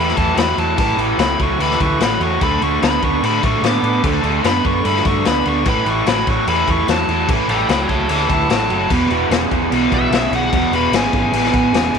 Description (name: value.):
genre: blues rock power trio and southern rock.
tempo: 148 BPM.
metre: 4/4.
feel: straight.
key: A major.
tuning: A4 = 440 Hz.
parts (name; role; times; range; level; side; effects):
biting lead guitar; melody; 0.0-12.0 s; C#5 to D6; -21 LUFS; left 3 dB; overdrive.
raw garage guitar; riff; 0.0-12.0 s; E2 to B3; -18 LUFS; right 3 dB; overdrive.
hollow-body short-scale fingered electric bass; bass; 0.0-12.0 s; E1 to A2; -23 LUFS; right 1 dB; none.
raw garage drum kit; drums; 0.1-12.0 s; crash cymbal, kick drum, snare drum; -19 LUFS; left 4 dB; none.
room: little or no reverb.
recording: 1960s-style stereo.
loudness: -14 LUFS.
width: side -6 dB against mid.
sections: 0.0-12.0 A section.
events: lead electric guitar solo 0.0-12.0.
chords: 0.0 A; 2.4 D5; 5.7 A; 8.9 E.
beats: 0.37 | 0.78 1.19 1.60 2.00 | 2.41 2.82 3.23 3.63 | 4.04 4.45 4.86 5.26 | 5.67 6.07 6.48 6.88 | 7.29 7.70 8.10 8.51 | 8.91 9.31 9.72 10.12 | 10.53 10.93 11.33 11.73.